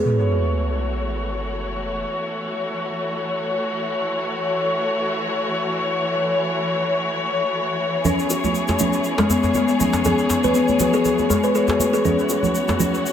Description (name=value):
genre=afro house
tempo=120 BPM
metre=4/4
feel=swing 54% on 16ths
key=F# minor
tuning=A4 = 445 Hz
part: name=dark symphonic string section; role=sustained chords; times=0.0-13.1 s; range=E3 to C#5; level=-22 LUFS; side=left 1 dB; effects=none
part: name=sub drop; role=sound effects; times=0.1-2.1 s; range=none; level=-24 LUFS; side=right 1 dB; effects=none
part: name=congas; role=percussion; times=8.0-12.9 s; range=none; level=-24 LUFS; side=right 4 dB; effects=dub echo
part: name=djembe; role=percussion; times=8.0-12.8 s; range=none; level=-28 LUFS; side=equal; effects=dub echo
part: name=tube shaker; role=percussion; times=8.0-13.1 s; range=none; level=-30 LUFS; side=left 2 dB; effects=none
part: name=kalimba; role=arpeggios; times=8.1-12.9 s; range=G#3 to B4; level=-20 LUFS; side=left 2 dB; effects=dub echo
room=wet spring reverb, RT60 2.1 s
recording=echo-heavy mix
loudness=-19 LUFS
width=side -9 dB against mid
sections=0.1-13.1 A section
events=impact 0.1-2.1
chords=0.1 F#m7; 8.1 C#m7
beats=| 0.05 0.55 1.05 1.55 | 2.05 2.55 3.05 3.55 | 4.05 4.55 5.05 5.55 | 6.05 6.55 7.05 7.55 | 8.05 8.55 9.05 9.55 | 10.05 10.55 11.05 11.55 | 12.05 12.55 13.05